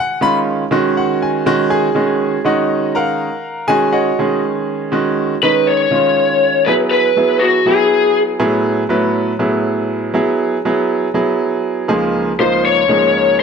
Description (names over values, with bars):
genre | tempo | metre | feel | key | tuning
jazz | 241 BPM (eighths) | 7/8 | straight | unclear | A4 = 440 Hz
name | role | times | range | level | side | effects
bright baby grand piano | accompaniment | 0.0-13.4 s | C#2 to B5 | -15 LUFS | right 2 dB | none
lead guitar through a small cranked amp | melody | 5.4-8.2, 12.4-13.4 s | F#4 to C#5 | -12 LUFS | left 3 dB | overdrive, slapback echo
room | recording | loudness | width
moderate echo chamber reverb, RT60 2.1 s | none | -13 LUFS | side -6 dB against mid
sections
0.0-4.9 A section; 4.9-13.4 B section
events
grand piano fill 0.7-1.5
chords
0.0 G#7(no3); 1.5 D#m9; 4.9 G#5; 6.7 E; 8.4 Asus2; 10.2 F#9sus4; 11.9 C#